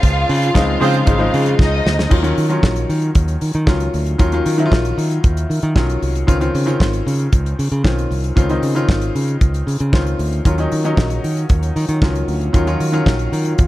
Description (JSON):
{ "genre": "disco", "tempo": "115 BPM", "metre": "4/4", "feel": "straight", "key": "Eb dorian", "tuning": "A4 = 440 Hz", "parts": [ { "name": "warm studio string section", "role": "second line", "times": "0.0-2.1 s", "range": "Eb4 to F5", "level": "-21 LUFS", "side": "equal", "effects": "none" }, { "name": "clear concert grand piano", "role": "accompaniment", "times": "0.0-13.7 s", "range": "Db3 to F4", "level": "-20 LUFS", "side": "left 2 dB", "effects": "none" }, { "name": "dark French horn section", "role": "sustained chords", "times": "0.0-2.1, 10.5-13.7 s", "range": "Db3 to F4", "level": "-28 LUFS", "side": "equal", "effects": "none" }, { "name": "modern bright fingered electric bass", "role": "bass", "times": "0.0-13.7 s", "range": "Ab1 to Eb3", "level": "-18 LUFS", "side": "equal", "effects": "none" }, { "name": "damped 70s drum kit", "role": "drums", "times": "0.0-13.7 s", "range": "crash cymbal, hi-hat, kick drum, snare drum", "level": "-17 LUFS", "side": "equal", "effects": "none" }, { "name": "warm horn section", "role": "stabs", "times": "0.8-1.0 s", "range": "C4 to C5", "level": "-23 LUFS", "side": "right 6 dB", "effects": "none" } ], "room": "small room ambience", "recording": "none", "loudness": "-14 LUFS", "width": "side -16 dB against mid", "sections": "0.0-2.1 A section; 2.1-13.7 B section", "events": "band accent 0.0-2.1; drum fill 1.6-2.1", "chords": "0.0 Dbmaj9; 2.1 Ebm9; 6.3 Dbmaj9; 10.5 Ebm9" }